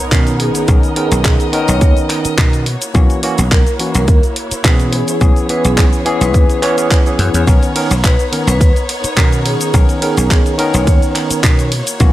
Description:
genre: nu-disco, nu disco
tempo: 106 BPM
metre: 4/4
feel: swing 54% on 16ths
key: B major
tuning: A4 = 441 Hz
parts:
  - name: dark chamber string section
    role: sustained chords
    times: 0.0-12.1 s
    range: A#3 to D#5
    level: -23 LUFS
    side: equal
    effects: sidechain pumping
  - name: impact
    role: sound effects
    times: 0.0-0.7 s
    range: none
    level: -33 LUFS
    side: equal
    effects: none
  - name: barky tine electric piano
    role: accompaniment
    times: 0.1-12.1 s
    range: D#3 to C#5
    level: -17 LUFS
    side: moving between left 5 dB and right 3 dB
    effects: auto-pan, slapback echo
  - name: dry thumbed slap bass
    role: bass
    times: 0.1-12.1 s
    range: B1 to B2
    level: -15 LUFS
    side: equal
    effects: none
  - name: electronic kick drum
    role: drums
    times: 0.1-12.1 s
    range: none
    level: -11 LUFS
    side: equal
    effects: none
  - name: house drum kit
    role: drums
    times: 0.1-12.1 s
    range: cabasa, handclaps, hi-hat, ride cymbal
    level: -20 LUFS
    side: equal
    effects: none
  - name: vibraphone with hard mallets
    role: melody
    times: 0.4-11.0 s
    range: G#4 to C#5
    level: -22 LUFS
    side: right 1 dB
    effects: tape echo
room: little or no reverb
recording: none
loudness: -10 LUFS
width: side -15 dB against mid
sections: 0.0-12.1 A section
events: impact 0.0-0.7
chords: 0.0 Bmaj9; 2.7 F#7/B; 4.9 E6/B; 7.5 Bmaj9

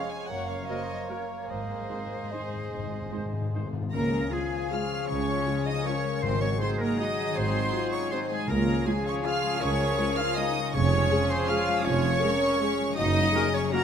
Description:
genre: classical, orchestral ballroom waltz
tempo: 138-172 BPM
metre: 3/4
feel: rubato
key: Db major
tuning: A4 = 441 Hz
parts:
  - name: warm chamber violin section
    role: melody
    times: 0.0-13.8 s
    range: C5 to Bb6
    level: -35 LUFS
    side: right 1 dB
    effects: none
  - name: bright oboe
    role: second line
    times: 0.0-13.8 s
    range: Ab4 to Bb5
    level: -37 LUFS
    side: right 2 dB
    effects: none
  - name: bright silver concert flute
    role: second line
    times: 0.0-13.8 s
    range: Ab4 to Bb5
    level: -35 LUFS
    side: left 1 dB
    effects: none
  - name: warm symphonic violin section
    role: second line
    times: 0.0-13.8 s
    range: Ab4 to Bb5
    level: -35 LUFS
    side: left 1 dB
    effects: none
  - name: warm bassoon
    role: accompaniment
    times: 0.0-3.7 s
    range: Ab3 to Bb3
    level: -37 LUFS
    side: right 4 dB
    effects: none
  - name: bright trombone section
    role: sustained chords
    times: 0.0-13.8 s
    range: Db3 to Eb4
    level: -37 LUFS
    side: right 2 dB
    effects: none
  - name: mellow French horn section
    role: sustained chords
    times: 0.0-13.8 s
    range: C4 to Bb4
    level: -34 LUFS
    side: left 5 dB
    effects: none
  - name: concert harp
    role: arpeggios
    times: 0.0-13.8 s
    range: F2 to Bb5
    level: -35 LUFS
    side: left 9 dB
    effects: none
  - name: warm trumpet section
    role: stabs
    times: 0.0-13.8 s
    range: Ab4 to C5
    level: -39 LUFS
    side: left 1 dB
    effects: none
  - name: dark symphonic double bass section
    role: bass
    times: 0.3-13.3 s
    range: F1 to Db2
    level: -32 LUFS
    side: right 4 dB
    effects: none
  - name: warm symphonic cello section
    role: bass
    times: 0.3-13.8 s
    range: Gb2 to Bb4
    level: -34 LUFS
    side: right 1 dB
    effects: none
  - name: dark symphonic viola section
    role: accompaniment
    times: 0.7-13.8 s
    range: Ab3 to Ab4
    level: -35 LUFS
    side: right 1 dB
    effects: none
  - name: timpani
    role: percussion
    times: 1.5-9.0 s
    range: Ab2 to Db3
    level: -35 LUFS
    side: left 2 dB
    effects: none
  - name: mellow tuba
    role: bass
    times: 3.9-13.3 s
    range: F1 to Db2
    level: -33 LUFS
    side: right 5 dB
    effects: none
room: light reverb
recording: close, detailed microphones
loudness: -25 LUFS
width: side -8 dB against mid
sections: 0.0-3.9 A section; 3.9-13.8 B section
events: timpani fill 1.5-3.9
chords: 0.3 Gb; 1.5 Ab; 3.9 Db; 6.2 Ab7; 8.5 Db; 10.7 Db/F; 13.0 Gb

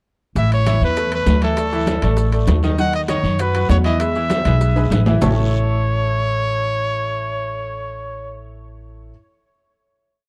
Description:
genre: latin, salsa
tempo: 198 BPM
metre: 4/4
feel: straight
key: A major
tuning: A4 = 440 Hz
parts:
  - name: brilliant trumpet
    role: melody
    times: 0.4-8.4 s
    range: A4 to F#5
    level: -25 LUFS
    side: equal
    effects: none
  - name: bright concert grand piano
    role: accompaniment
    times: 0.4-9.1 s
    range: D#3 to A5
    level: -28 LUFS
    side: equal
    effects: none
  - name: upright bass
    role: bass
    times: 0.4-9.1 s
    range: A1 to F#2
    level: -21 LUFS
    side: equal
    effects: none
  - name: bongos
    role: percussion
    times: 0.4-5.3 s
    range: none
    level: -31 LUFS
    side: equal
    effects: none
  - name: congas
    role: percussion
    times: 0.4-5.3 s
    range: none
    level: -28 LUFS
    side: equal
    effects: none
  - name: guiro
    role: percussion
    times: 0.4-5.3 s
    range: none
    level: -41 LUFS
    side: equal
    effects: none
  - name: maracas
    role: percussion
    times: 0.4-5.3 s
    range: none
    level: -44 LUFS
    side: equal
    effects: none
  - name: timbales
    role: percussion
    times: 0.5-5.3 s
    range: none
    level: -28 LUFS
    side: equal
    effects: none
room: little or no reverb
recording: dark, warm production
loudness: -18 LUFS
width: mono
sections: 0.4-5.2 verse; 5.2-7.6 final chord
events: drum fill 4.8-5.2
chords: 0.4 Asus2; 1.6 Dsus2; 2.8 B/D#; 4.0 E; 5.2 A

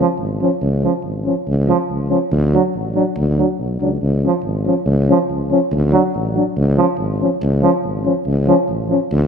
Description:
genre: balkan folk, Balkan brass band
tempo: 142 BPM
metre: 2/4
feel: swing 55% on 16ths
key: C# phrygian dominant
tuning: A4 = 440 Hz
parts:
  - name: mellow euphonium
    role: accompaniment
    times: 0.0-9.0 s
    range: C#4 to D4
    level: -20 LUFS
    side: left 5 dB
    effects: none
  - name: warm trombone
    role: accompaniment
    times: 0.0-9.0 s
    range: E#3 to F#3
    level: -20 LUFS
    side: right 6 dB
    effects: none
  - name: mellow tuba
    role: bass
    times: 0.2-9.3 s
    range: G#1 to D2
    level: -18 LUFS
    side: equal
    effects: none
room: moderate scoring stage reverb, RT60 1.9 s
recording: none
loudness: -15 LUFS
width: side -6 dB against mid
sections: 0.6-7.4 A section; 7.4-9.3 B section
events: none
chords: 0.0 C#; 2.3 D; 4.0 C#; 5.7 D; 6.6 C#

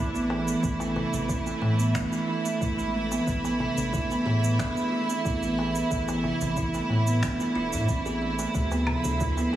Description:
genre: organic downtempo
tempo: 91 BPM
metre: 4/4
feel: straight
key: unclear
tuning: A4 = 439 Hz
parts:
  - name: clear studio string section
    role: sustained chords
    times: 0.0-9.6 s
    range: E3 to E4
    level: -29 LUFS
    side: right 2 dB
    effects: sidechain pumping
  - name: kalimba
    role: arpeggios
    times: 0.0-9.6 s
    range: G#3 to G#4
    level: -29 LUFS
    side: right 1 dB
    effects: tape echo
  - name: round analog bass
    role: bass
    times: 0.1-9.6 s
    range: E1 to A2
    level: -29 LUFS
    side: equal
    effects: none
  - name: electronic shaker, finger snaps and woodblock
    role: drums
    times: 0.2-9.5 s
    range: none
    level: -38 LUFS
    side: right 1 dB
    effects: small room ambience
  - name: darbuka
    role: percussion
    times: 0.3-9.6 s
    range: none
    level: -37 LUFS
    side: left 1 dB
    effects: none
  - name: electronic kick drum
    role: drums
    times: 0.6-9.3 s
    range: none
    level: -30 LUFS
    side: equal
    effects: small room ambience
room: wet lush hall reverb, RT60 1.9 s, small room ambience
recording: heavily compressed radio sound, multiband compression, studio ambience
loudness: -24 LUFS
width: side -12 dB against mid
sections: 0.0-9.6 A section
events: none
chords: 0.0 A5; 8.5 Dmadd9

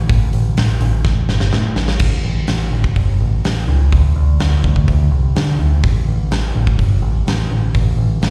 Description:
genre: blues rock power trio and southern rock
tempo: 125 BPM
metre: 4/4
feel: straight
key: unclear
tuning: A4 = 439 Hz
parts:
  - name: deep dub picked electric bass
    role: bass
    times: 0.0-8.3 s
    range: G1 to D3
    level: -17 LUFS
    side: equal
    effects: none
  - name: big rock drum kit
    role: drums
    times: 0.1-8.3 s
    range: crash cymbal, hi-hat, kick drum, snare drum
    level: -21 LUFS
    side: equal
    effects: none
room: little or no reverb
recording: live gig heard through the venue's PA, recital hall reverb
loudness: -16 LUFS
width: mono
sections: 0.0-2.0 A section; 2.0-8.3 B section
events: drum fill 1.1-2.0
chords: none

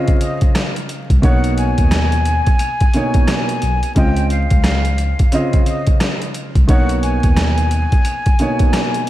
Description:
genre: hip hop, boom-bap hip-hop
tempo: 88 BPM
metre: 4/4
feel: swing 61% on 16ths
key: B major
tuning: A4 = 441 Hz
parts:
  - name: dark baby grand piano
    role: accompaniment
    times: 0.0-9.0 s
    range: B2 to D#5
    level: -21 LUFS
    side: right 1 dB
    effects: cassette tape, high-pass filter, low-pass filter
  - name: boom bap sampler-style drum kit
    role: drums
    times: 0.1-9.1 s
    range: hi-hat, kick drum, rim click, snare drum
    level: -15 LUFS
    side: equal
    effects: none
  - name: breathy concert flute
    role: melody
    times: 0.2-9.1 s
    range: D#5 to G#5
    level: -23 LUFS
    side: left 2 dB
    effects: high-pass filter, low-pass filter, diffuse ambient delay
  - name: mellow tine electric piano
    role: bass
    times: 1.1-7.8 s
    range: B1 to D#2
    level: -17 LUFS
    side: equal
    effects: slow stereo tremolo
room: light reverb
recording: vinyl crackle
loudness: -13 LUFS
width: side -14 dB against mid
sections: 0.0-9.1 A section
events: none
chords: 0.0 C#maj9; 1.2 Bmaj9; 4.0 C#maj9; 6.7 Bmaj9

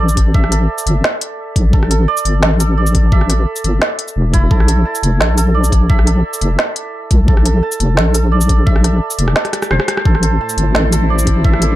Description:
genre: half-time drum and bass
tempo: 173 BPM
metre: 4/4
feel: half-time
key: A phrygian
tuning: A4 = 445 Hz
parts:
  - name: santur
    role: arpeggios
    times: 0.0-11.8 s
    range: E4 to A5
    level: -20 LUFS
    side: right 4 dB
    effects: vintage 12-bit sampler grit, ping-pong delay
  - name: deep soft wobble bass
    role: bass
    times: 0.0-11.8 s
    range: E1 to C2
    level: -13 LUFS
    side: equal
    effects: chorus
  - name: organic electronic drum kit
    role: drums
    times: 0.1-11.7 s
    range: hi-hat, rim click, shaker, snare drum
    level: -18 LUFS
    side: equal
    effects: none
  - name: electronic kick drum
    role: drums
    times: 0.2-11.5 s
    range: none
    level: -13 LUFS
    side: equal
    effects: overdrive
  - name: warm symphonic cello section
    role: sustained chords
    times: 10.1-11.8 s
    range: A2 to C5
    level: -22 LUFS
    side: equal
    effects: sidechain pumping
room: little or no reverb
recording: none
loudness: -11 LUFS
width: side -15 dB against mid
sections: 0.0-11.8 A section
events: drum fill 9.4-10.1; kick drops out 9.7-10.1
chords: 0.0 A5; 4.5 Bb5; 10.1 Am

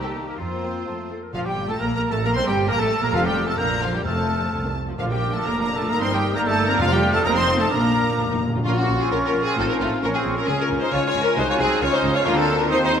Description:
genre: quick classical-period movement for symphony orchestra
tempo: 125-137 BPM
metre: 2/4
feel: rubato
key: Bb major, Bb minor from 8.7 s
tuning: A4 = 441 Hz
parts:
  - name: rich studio violin section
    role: melody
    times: 0.0-13.0 s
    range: F4 to C6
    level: -30 LUFS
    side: left 2 dB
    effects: none
  - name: clear clarinet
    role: second line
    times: 0.0-13.0 s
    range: Db4 to D5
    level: -31 LUFS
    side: left 2 dB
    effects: none
  - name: concert flute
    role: second line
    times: 0.0-13.0 s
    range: F5 to G6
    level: -30 LUFS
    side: equal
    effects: none
  - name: rich studio violin section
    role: second line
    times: 0.0-13.0 s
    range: A3 to C6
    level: -27 LUFS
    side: left 2 dB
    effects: none
  - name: warm cor anglais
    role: second line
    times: 0.0-13.0 s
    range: A3 to G5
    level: -30 LUFS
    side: right 2 dB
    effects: none
  - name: dark French horn section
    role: sustained chords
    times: 0.0-13.0 s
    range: F3 to Gb4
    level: -28 LUFS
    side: left 5 dB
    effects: none
  - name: clear studio double bass section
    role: bass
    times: 0.0-13.0 s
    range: F1 to F2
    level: -28 LUFS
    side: right 3 dB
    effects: none
  - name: rich studio cello section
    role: bass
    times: 0.0-13.0 s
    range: A2 to G4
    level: -30 LUFS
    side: right 2 dB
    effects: none
  - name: rich studio viola section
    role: accompaniment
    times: 0.2-12.9 s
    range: C3 to Db5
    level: -29 LUFS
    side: equal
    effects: none
  - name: dark trumpet section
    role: stabs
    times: 1.3-13.0 s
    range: A3 to C5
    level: -28 LUFS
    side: right 2 dB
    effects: none
  - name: timpani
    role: percussion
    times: 1.3-9.3 s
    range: F2 to Bb2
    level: -30 LUFS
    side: left 1 dB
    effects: none
room: wet concert hall reverb, RT60 2.0 s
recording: none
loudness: -19 LUFS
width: side -8 dB against mid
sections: 0.0-1.4 A section; 1.4-8.7 B section; 8.7-13.0 C section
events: timpani fill 7.7-8.7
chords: 0.4 Fsus4; 0.9 F; 1.4 Bb5; 2.3 Gmadd11; 2.7 N.C.; 3.1 F; 3.6 Bb; 4.1 F; 5.0 Bb; 5.9 Eb/G; 6.4 Cm7/G; 6.8 F; 7.2 F7; 7.7 Bb; 8.7 Bbm; 9.6 F7/A; 10.0 Bbm; 10.5 Db; 11.4 Ab7/C; 11.8 Db; 12.3 Bb/D

